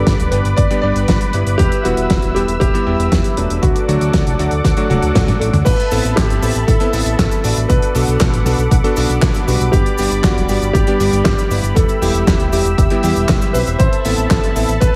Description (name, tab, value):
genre	italo disco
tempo	118 BPM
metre	4/4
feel	straight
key	G major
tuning	A4 = 440 Hz
part	dark grand piano	melody	0.0-15.0 s	F#4 to D5	-25 LUFS	equal	delay
part	warm analog pad	sustained chords	0.0-15.0 s	G3 to E6	-25 LUFS	equal	chorus
part	clear electric grand piano	stabs	0.0-14.7 s	F#3 to D5	-23 LUFS	equal	vintage 12-bit sampler grit
part	fat analog bass	bass	0.0-14.9 s	D1 to E2	-21 LUFS	equal	none
part	damped 70s drum kit	drums	0.1-14.9 s	cabasa, crash cymbal, handclaps, hi-hat, snare drum, toms	-22 LUFS	equal	small room ambience, gated reverb
part	electronic kick drum	drums	0.1-14.9 s	none	-19 LUFS	equal	small room ambience
room	light reverb, small room ambience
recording	vinyl crackle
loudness	-15 LUFS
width	mono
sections	0.0-5.7 A section; 5.7-15.0 B section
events	drum fill 4.9-5.7; band accent 5.2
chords	0.0 G; 1.6 Em; 3.6 D; 5.7 Amadd9; 7.7 Bm7; 9.7 G; 11.8 Em; 13.8 Amadd9